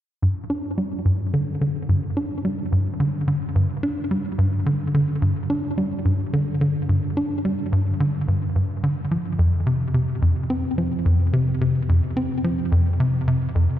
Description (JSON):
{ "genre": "ambient", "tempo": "108 BPM", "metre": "4/4", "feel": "straight", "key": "unclear", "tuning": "A4 = 440 Hz", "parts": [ { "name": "tight sequencer bass", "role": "solo", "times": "0.2-13.7 s", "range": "F2 to D4", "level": "-20 LUFS", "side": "equal", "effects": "tape echo" } ], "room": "wet cathedral reverb, RT60 6.1 s", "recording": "in a vast, echoing space", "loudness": "-20 LUFS", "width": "side -12 dB against mid", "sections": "0.2-13.8 A section", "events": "none", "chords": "none" }